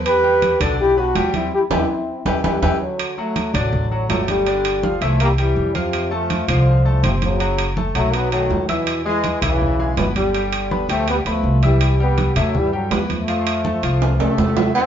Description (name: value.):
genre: latin, salsa.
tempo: 163 BPM.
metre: 4/4.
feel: straight.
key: E minor.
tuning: A4 = 440 Hz.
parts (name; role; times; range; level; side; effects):
bright grand piano; accompaniment; 0.0-14.7 s; D3 to F6; -26 LUFS; left 3 dB; none.
upright bass; bass; 0.0-14.9 s; F#1 to G2; -21 LUFS; equal; none.
clear trombone section; melody; 0.1-14.3 s; B2 to B4; -20 LUFS; left 1 dB; none.
congas; percussion; 0.1-14.9 s; none; -27 LUFS; right 1 dB; none.
timbales and agogo bells; percussion; 0.1-14.9 s; none; -24 LUFS; right 4 dB; none.
brilliant trombone section; melody; 14.2-14.9 s; C3 to C4; -20 LUFS; right 1 dB; none.
room: wet studio reverb, RT60 0.8 s.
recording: band playing live in one room, nothing above 7.5 kHz.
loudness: -16 LUFS.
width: side -9 dB against mid.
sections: 0.0-3.0 A section; 3.0-14.8 B section.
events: band accent 1.5-3.0; drum fill 2.3-3.0, 14.0-14.8.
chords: 0.1 Em7; 3.0 D; 4.5 G5; 5.2 C; 5.9 F; 7.4 F#m; 8.1 B7; 8.9 E; 10.3 G7; 11.8 Cmaj7; 13.3 F.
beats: | 0.06 0.42 0.79 1.16 | 1.52 1.89 2.26 2.63 | 2.99 3.36 3.73 4.10 | 4.46 4.83 5.20 5.57 | 5.93 6.30 6.67 7.04 | 7.40 7.77 8.14 8.51 | 8.87 9.24 9.61 9.97 | 10.34 10.71 11.08 11.44 | 11.81 12.18 12.54 12.91 | 13.28 13.65 14.02 14.38 | 14.75.